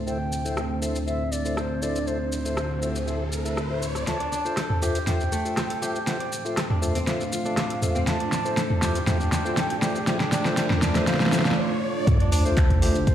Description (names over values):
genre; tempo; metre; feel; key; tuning
afro house; 120 BPM; 4/4; straight; D minor; A4 = 440 Hz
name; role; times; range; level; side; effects
dark analog pad; sustained chords; 0.0-13.1 s; A3 to D5; -31 LUFS; right 2 dB; chorus, sidechain pumping
dark detuned saw bass; bass; 0.0-4.0, 12.1-13.1 s; D2; -29 LUFS; equal; sidechain pumping
bansuri; melody; 0.1-11.5 s; C5 to A5; -32 LUFS; equal; tape echo
mellow tonewheel organ; stabs; 0.1-13.1 s; E4 to E5; -32 LUFS; left 3 dB; slow rotary speaker, sidechain pumping, tape echo
deep house drum kit; drums; 0.1-13.1 s; handclaps, hi-hat, rim click, shaker, snare drum, toms; -26 LUFS; equal; none
riser and sub drop; sound effects; 2.0-13.1 s; none; -31 LUFS; equal; none
kora; arpeggios; 4.2-13.1 s; A3 to D5; -31 LUFS; equal; sidechain pumping, tape echo
electronic kick drum; drums; 12.1-13.1 s; none; -20 LUFS; equal; none
room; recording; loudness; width
moderate plate reverb, RT60 1.6 s, digital ambience; played on a big sound system in a bare room, large studio reverb; -22 LUFS; side -10 dB against mid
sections
0.0-4.1 A section; 4.1-12.1 B section; 12.1-13.1 C section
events
filter sweep on analog synth pad 0.0-4.1, 4.1-12.1; riser 2.0-4.1, 4.1-12.1; build-up 4.1-12.1; drum fill 4.1-11.6; break 11.6-12.1; drop 12.1-13.1; impact 12.1-13.1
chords
0.0 Am/D; 4.1 Dm7